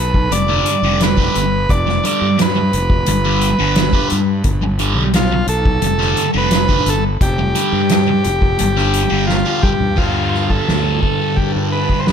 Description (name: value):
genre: psychedelic rock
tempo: 87 BPM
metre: 4/4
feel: straight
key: G mixolydian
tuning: A4 = 440 Hz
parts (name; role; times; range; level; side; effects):
- combo organ; melody; 0.0-12.1 s; F4 to D5; -19 LUFS; right 1 dB; tape echo
- fuzz fingered electric bass; bass; 0.0-12.1 s; F1 to G2; -19 LUFS; equal; overdrive
- soft-mallet drum kit; drums; 0.1-12.1 s; crash cymbal, hi-hat, kick drum, ride cymbal, snare drum, toms; -18 LUFS; equal; none
- thick fuzz guitar; riff; 0.3-12.1 s; G2 to G3; -18 LUFS; equal; distortion, phaser
room: light reverb, small room ambience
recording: none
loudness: -13 LUFS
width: side -8 dB against mid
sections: 0.0-10.0 A section; 10.0-12.1 B section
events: drum fill 9.3-10.0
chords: 0.0 G7